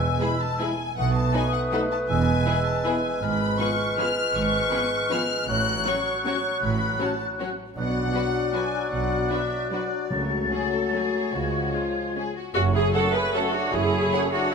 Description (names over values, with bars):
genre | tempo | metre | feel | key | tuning
classical, orchestral ballroom waltz | 140-171 BPM | 3/4 | rubato | F# minor from 3.2 s | A4 = 441 Hz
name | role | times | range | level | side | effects
warm symphonic violin section | melody | 0.0-14.2 s | C#5 to F#6 | -30 LUFS | left 5 dB | none
clear clarinet | second line | 0.0-14.5 s | B4 to D5 | -32 LUFS | left 2 dB | none
mellow large flute ensemble | second line | 0.0-14.5 s | F#5 to A6 | -30 LUFS | left 1 dB | none
warm bassoon | accompaniment | 0.0-14.5 s | E#3 to A3 | -34 LUFS | right 2 dB | none
clear symphonic double bass section | bass | 0.0-14.1 s | E1 to C#2 | -30 LUFS | right 4 dB | none
rich symphonic cello section | bass | 0.0-14.1 s | E2 to C#3 | -31 LUFS | right 3 dB | none
clear symphonic violin section | second line | 0.2-14.2 s | E#4 to F#5 | -35 LUFS | left 3 dB | none
rich symphonic viola section | accompaniment | 0.2-14.5 s | E3 to B4 | -28 LUFS | right 1 dB | none
mellow French horn section | sustained chords | 0.2-14.3 s | G#3 to F#4 | -31 LUFS | left 5 dB | none
timpani | percussion | 10.1-10.7 s | C#3 | -35 LUFS | left 2 dB | none
mellow trumpet section | stabs | 12.6-14.5 s | C#4 to G#4 | -30 LUFS | right 2 dB | none
clear trombone section | sustained chords | 12.9-14.3 s | F#2 to A3 | -35 LUFS | right 4 dB | none
room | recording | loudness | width
wet recital hall reverb, RT60 1.6 s | none | -22 LUFS | side -5 dB against mid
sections
0.0-12.6 A section; 12.6-14.5 B section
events
none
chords
0.0 E; 1.0 B7; 2.1 E; 3.2 C#7/G#; 5.5 F#m/A; 7.8 Bm; 10.1 F#m/C#; 11.3 C#; 12.6 F#m